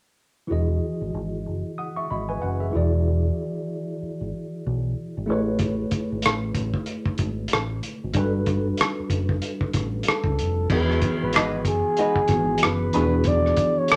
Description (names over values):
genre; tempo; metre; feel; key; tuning
R&B, neo-soul; 94 BPM; 4/4; swing 58% on 16ths; E major; A4 = 440 Hz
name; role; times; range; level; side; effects
tine electric piano; accompaniment; 0.5-14.0 s; E3 to D#6; -29 LUFS; equal; overdrive
deep dub fingered electric bass; bass; 0.5-13.5 s; E1 to C#2; -28 LUFS; equal; none
cloth-damped thuddy drum kit; drums; 5.6-14.0 s; crash cymbal, hi-hat, kick drum, rim click; -26 LUFS; equal; none
breathy flugelhorn; melody; 10.1-14.0 s; G#4 to D5; -27 LUFS; equal; none
hollow-body jazz guitar; second line; 11.3-13.2 s; G#3 to B4; -29 LUFS; equal; wah
room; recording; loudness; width
moderate studio reverb, RT60 0.5 s; none; -24 LUFS; mono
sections
0.5-10.7 A section; 10.7-14.0 B section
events
none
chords
0.5 Emaj9; 2.7 E7; 5.3 Amaj9; 8.1 Gmaj9; 10.7 Emaj9; 12.9 E7